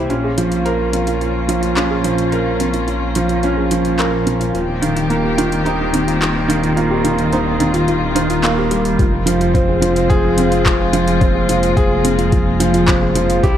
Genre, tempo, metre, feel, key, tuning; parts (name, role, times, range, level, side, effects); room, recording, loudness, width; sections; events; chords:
piano and strings electronica; 108 BPM; 4/4; straight; F minor; A4 = 439 Hz
muted string quartet; sustained chords; 0.0-13.6 s; Eb3 to G4; -22 LUFS; left 2 dB; sidechain pumping
soft round pluck; arpeggios; 0.0-13.6 s; C4 to F5; -24 LUFS; equal; analog chorus, sidechain pumping, digital delay
felt-muted upright piano; riff; 0.0-13.6 s; Eb3 to C5; -16 LUFS; right 1 dB; digital delay
dark detuned saw bass; bass; 0.0-13.6 s; Eb1 to C2; -22 LUFS; equal; sidechain pumping
deep house drum kit; drums; 0.1-13.5 s; handclaps, hi-hat; -24 LUFS; left 1 dB; overdrive
electronic kick drum; drums; 9.0-13.5 s; -16 LUFS; equal; overdrive
moderate concert hall reverb, RT60 2.4 s; dark, warm production; -14 LUFS; side -10 dB against mid
0.0-9.0 A section; 9.0-13.6 B section
build-up 0.0-9.0; drop 9.0-13.6
0.1 Bbm; 4.5 Eb6; 9.0 Fm